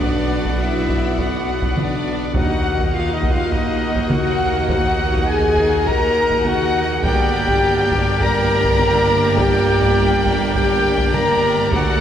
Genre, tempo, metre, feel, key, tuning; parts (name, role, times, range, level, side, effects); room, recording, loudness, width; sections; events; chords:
cinematic, epic orchestral film score; 102 BPM; 4/4; straight; A4 = 445 Hz
warm symphonic violin section; melody; 0.0-12.0 s; D5 to A#5; -26 LUFS; left 3 dB
clear symphonic violin section; second line; 0.0-12.0 s; D5 to G5; -28 LUFS; left 1 dB
concert flute; second line; 0.0-12.0 s; D5 to Bb5; -25 LUFS; right 1 dB
warm symphonic viola section; accompaniment; 0.0-12.0 s; A3 to F#4; -28 LUFS; right 2 dB
pipe organ, trumpet; sustained chords; 0.0-12.0 s; B3 to F#5; -28 LUFS; right 1 dB
warm French horn section; sustained chords; 0.0-12.0 s; D4 to A#4; -20 LUFS; left 2 dB
dark tuba; bass; 0.0-12.0 s; G1 to D#2; -26 LUFS; right 2 dB
rich symphonic cello section; bass; 0.0-12.0 s; D2 to B2; -28 LUFS; right 2 dB
rich symphonic double bass section; bass; 0.0-12.0 s; G1 to D#2; -27 LUFS; right 2 dB
taiko ensemble; drums; 0.0-12.0 s; -23 LUFS; equal
wet cathedral reverb, RT60 5.8 s; recorded in a church or concert hall; -15 LUFS; side -9 dB against mid
0.0-12.0 A section
0.0 Bm; 2.4 D#m; 7.0 Gm